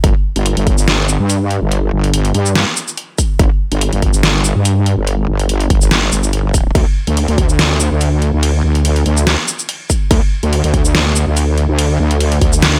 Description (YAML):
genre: heavy wobble dubstep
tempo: 143 BPM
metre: 4/4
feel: swing 54% on 16ths, half-time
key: unclear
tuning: A4 = 444 Hz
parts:
  - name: wobble bass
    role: bass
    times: 0.0-12.8 s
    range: G1 to G2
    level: -16 LUFS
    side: equal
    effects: chorus, overdrive
  - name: dubstep drum kit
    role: drums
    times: 0.0-12.7 s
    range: crash cymbal, hi-hat, shaker, snare drum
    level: -20 LUFS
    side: equal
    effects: none
  - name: electronic kick drum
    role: drums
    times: 0.0-12.5 s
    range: none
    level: -16 LUFS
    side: equal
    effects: none
room: little or no reverb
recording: none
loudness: -14 LUFS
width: mono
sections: 0.0-12.8 A section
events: none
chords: none